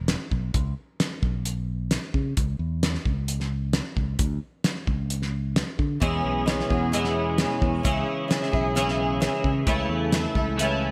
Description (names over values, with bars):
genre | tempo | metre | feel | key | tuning
folk rock and heartland rock | 132 BPM | 4/4 | straight | E major | A4 = 435 Hz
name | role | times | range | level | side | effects
fingered electric bass | bass | 0.0-10.9 s | E1 to D3 | -30 LUFS | equal | none
cloth-damped thuddy drum kit | drums | 0.1-10.7 s | hi-hat, kick drum, snare drum | -28 LUFS | equal | gated reverb
picked swing-style acoustic guitar | accompaniment | 6.0-10.9 s | C#3 to A4 | -29 LUFS | equal | ensemble chorus
twelve-string electric guitar | riff | 6.0-10.9 s | E2 to E4 | -30 LUFS | equal | ensemble chorus
room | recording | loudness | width
moderate lush hall reverb, RT60 2.0 s | bright 1980s-style digital production | -26 LUFS | mono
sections
0.0-10.9 A section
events
none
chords
0.0 E5; 0.5 Bsus2; 2.4 C#m; 4.2 N.C.; 6.0 E6; 9.7 A/C#